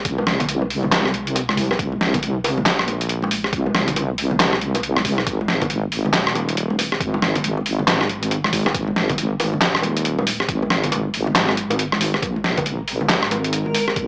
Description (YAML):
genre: deep dubstep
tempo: 138 BPM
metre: 4/4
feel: swing 61% on 16ths, half-time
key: unclear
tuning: A4 = 440 Hz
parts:
  - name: deep soft wobble bass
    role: bass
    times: 0.0-14.1 s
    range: Eb1 to C2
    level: -26 LUFS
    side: equal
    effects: chorus
  - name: electronic kick drum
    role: drums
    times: 0.1-14.1 s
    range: none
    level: -32 LUFS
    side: equal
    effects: overdrive, small room ambience
  - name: trip hop sampler-style drum kit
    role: drums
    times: 0.1-14.1 s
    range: handclaps, hi-hat, rim click, snare drum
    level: -22 LUFS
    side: equal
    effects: overdrive, small room ambience
  - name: bongos and congas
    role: percussion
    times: 0.2-13.8 s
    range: none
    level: -28 LUFS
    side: equal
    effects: dub echo
  - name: backwards swelling texture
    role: texture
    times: 12.8-14.1 s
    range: Bb4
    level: -30 LUFS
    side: equal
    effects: built-in reverb
room: light reverb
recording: dry, gritty hardware recording, cassette tape, small speaker sound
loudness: -20 LUFS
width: mono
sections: 0.0-14.1 A section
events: break 11.8-12.2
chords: 0.0 Bbsus2; 5.3 Ab5; 12.2 Absus2